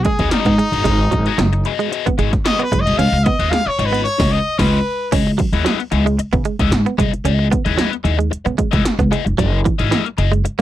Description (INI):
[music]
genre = funk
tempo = 113 BPM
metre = 4/4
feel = straight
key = unclear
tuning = A4 = 440 Hz
[part]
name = brilliant trumpet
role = melody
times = 0.0-5.1 s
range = D#4 to E#5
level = -20 LUFS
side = left 1 dB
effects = none
[part]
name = 80s electronic pad drums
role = drums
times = 0.0-10.6 s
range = crash cymbal, hi-hat, kick drum, snare drum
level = -19 LUFS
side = equal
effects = none
[part]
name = direct-recorded clean electric guitar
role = riff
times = 0.1-10.6 s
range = E3 to C#4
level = -22 LUFS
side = right 8 dB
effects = none
[part]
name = overdriven semi-hollow guitar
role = accompaniment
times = 0.2-10.6 s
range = A#3 to D#5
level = -22 LUFS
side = left 12 dB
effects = wah
[part]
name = upright bass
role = bass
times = 0.2-10.6 s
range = E#1 to C#3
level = -18 LUFS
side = equal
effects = none
[sound]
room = little or no reverb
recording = dry, close 1970s-style studio recording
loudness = -14 LUFS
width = side -13 dB against mid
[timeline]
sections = 0.0-5.1 A section; 5.1-10.6 B section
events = trumpet solo 0.0-5.1; band accent 4.1-5.1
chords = 0.0 G#m7; 3.0 C#9; 5.1 C#m9; 9.4 F#13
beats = 0.32 | 0.86 1.39 1.92 2.46 | 2.99 3.52 4.06 4.59 | 5.12 5.66 6.19 6.72 | 7.25 7.79 8.32 8.85 | 9.38 9.92 10.45